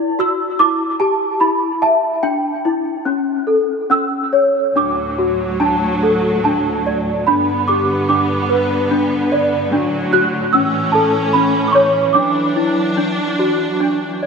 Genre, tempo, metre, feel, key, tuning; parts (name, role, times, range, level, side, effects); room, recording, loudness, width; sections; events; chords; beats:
children's music, lullaby; 73 BPM; 3/4; rubato; D major; A4 = 439 Hz
small celesta; melody; 0.0-14.3 s; C#4 to F#6; -15 LUFS; equal; ensemble chorus, diffuse ambient delay
rich studio string section; sustained chords; 4.8-14.3 s; D2 to D4; -20 LUFS; right 1 dB
wet plate reverb, RT60 3.4 s; dreamy mix soaked in reverb; -14 LUFS; side -5 dB against mid
0.0-14.3 A section
0.0 Emadd9; 2.2 Dsus24; 3.1 A; 4.8 D; 7.3 G; 9.7 D/A; 10.5 A; 12.1 Dadd9
0.59 1.41 | 2.24 3.06 3.90 | 4.75 5.60 6.44 | 7.27 8.10 8.92 | 9.73 10.54 11.34 | 12.15 12.96 13.79